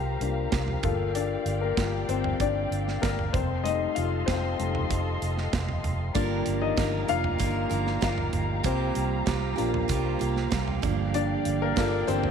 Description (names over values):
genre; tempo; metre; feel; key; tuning
piano-driven pop; 96 BPM; 4/4; straight; G minor; A4 = 439 Hz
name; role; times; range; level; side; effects
warm concert grand piano; accompaniment; 0.0-12.3 s; Eb3 to F5; -29 LUFS; left 9 dB; none
muted studio string section; sustained chords; 0.0-12.3 s; G4 to C6; -35 LUFS; left 2 dB; none
vintage muted fingered electric bass; bass; 0.0-12.3 s; F1 to C2; -30 LUFS; right 1 dB; none
modern studio drum kit; drums; 0.2-12.3 s; hi-hat, kick drum, snare drum, toms; -31 LUFS; right 4 dB; none
picked steel-string acoustic guitar; riff; 6.1-12.3 s; G2 to Bb4; -30 LUFS; right 13 dB; none
room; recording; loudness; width
moderate echo chamber reverb, RT60 1.9 s, small room ambience; 1960s-style stereo with parts hard left and right; -24 LUFS; side -7 dB against mid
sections
0.0-12.3 A section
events
grand piano solo 0.0-12.3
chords
0.0 C7sus4; 0.8 Gm7; 3.3 F7; 6.2 Gm7; 8.7 C7sus4; 10.8 Gm7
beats
0.53 | 1.15 1.78 2.40 3.03 | 3.65 4.28 4.90 5.53 | 6.15 6.78 7.40 8.03 | 8.65 9.28 9.90 10.52 | 11.15 11.77